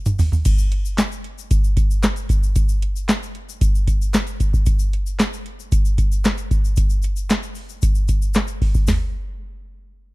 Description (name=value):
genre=funk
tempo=114 BPM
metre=4/4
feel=straight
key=none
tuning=none
part: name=booming analog drum machine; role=drums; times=0.1-9.0 s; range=crash cymbal, handclaps, hi-hat, kick drum, snare drum, toms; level=-17 LUFS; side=equal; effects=none
part: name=egg shaker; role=percussion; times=0.1-9.1 s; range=none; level=-37 LUFS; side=left 13 dB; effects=none
room=little or no reverb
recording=dry, close 1970s-style studio recording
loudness=-17 LUFS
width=side -22 dB against mid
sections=0.5-8.9 A section; 8.9-10.1 B section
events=drum fill 0.0-0.5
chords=none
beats=| 0.45 0.98 1.51 2.03 | 2.56 3.09 3.61 4.14 | 4.67 5.19 5.72 6.24 | 6.77 7.30 7.82 8.35 | 8.88